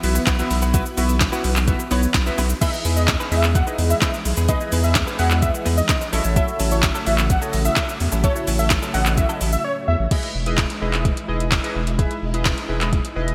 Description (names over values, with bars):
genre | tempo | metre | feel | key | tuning
dance-pop | 128 BPM | 4/4 | straight | E major | A4 = 445 Hz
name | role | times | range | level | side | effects
chorused polysynth | accompaniment | 0.0-13.3 s | B3 to F#5 | -30 LUFS | equal | sidechain pumping
string machine, full ensemble | sustained chords | 0.0-13.3 s | C#3 to G#4 | -33 LUFS | equal | ensemble chorus, sidechain pumping
saturated sub bass | bass | 0.0-13.3 s | E1 to E2 | -23 LUFS | equal | sidechain pumping
smooth R&B drum kit | drums | 0.0-13.3 s | crash cymbal, handclaps, hi-hat, kick drum, shaker, snare drum | -24 LUFS | equal | gated reverb
direct-recorded clean electric guitar | riff | 0.1-9.6 s | F#3 to B4 | -33 LUFS | equal | analog chorus
unison lead | melody | 2.6-10.0 s | C#5 to F#5 | -28 LUFS | equal | delay
room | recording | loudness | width
moderate lush hall reverb, RT60 2.0 s, digital ambience | bright 1980s-style digital production | -20 LUFS | mono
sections
0.0-2.6 A section; 2.6-10.1 B section; 10.1-13.3 C section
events
silent gap 9.6-10.1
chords
0.0 Bsus4; 2.6 Emaj7; 6.1 A6; 10.1 Emaj7